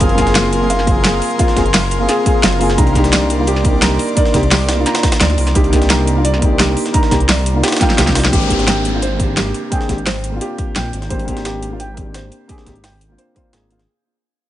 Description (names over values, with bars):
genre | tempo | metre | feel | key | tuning
liquid drum and bass | 173 BPM | 4/4 | straight | Ab lydian | A4 = 441 Hz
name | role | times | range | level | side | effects
dark grand piano | accompaniment | 0.0-13.8 s | Bb3 to Bb4 | -19 LUFS | left 1 dB | digital delay
airy breathy pad | sustained chords | 0.0-8.3 s | Bb4 to C6 | -24 LUFS | equal | chorus
felt-muted upright piano | arpeggios | 0.0-13.9 s | F4 to Bb5 | -22 LUFS | right 2 dB | low-pass filter, digital delay
dark detuned saw bass | bass | 0.0-13.9 s | Gb1 to D2 | -18 LUFS | equal | none
electronic kick drum | drums | 0.0-13.4 s | none | -17 LUFS | equal | none
jungle sampler-style drum kit | drums | 0.0-13.9 s | hi-hat, snare drum | -23 LUFS | equal | high-pass filter on snare, high-pass filter on hats
pop drum kit | drums | 0.0-13.9 s | hi-hat, snare drum | -18 LUFS | equal | none
downlifter | sound effects | 8.3-11.1 s | none | -25 LUFS | left 1 dB | none
room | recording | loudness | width
light reverb, digital ambience | nothing above 10.4 kHz | -12 LUFS | side -13 dB against mid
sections
0.0-8.3 A section; 8.3-13.9 B section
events
drop 0.0-8.3; drum fill 7.8-8.3; fade-out 8.3-13.9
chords
0.0 Gbmaj9#11; 2.8 Cm9; 8.3 Abmaj9#11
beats
| 0.01 0.35 0.70 1.05 | 1.39 1.74 2.09 2.43 | 2.78 3.13 3.47 3.82 | 4.17 4.51 4.86 5.21 | 5.55 5.90 6.25 6.59 | 6.94 7.29 7.64 7.98 | 8.33 8.68 9.02 9.37 | 9.72 10.06 10.41 10.76 | 11.10 11.45 11.80 12.14 | 12.49 12.84 13.19 13.53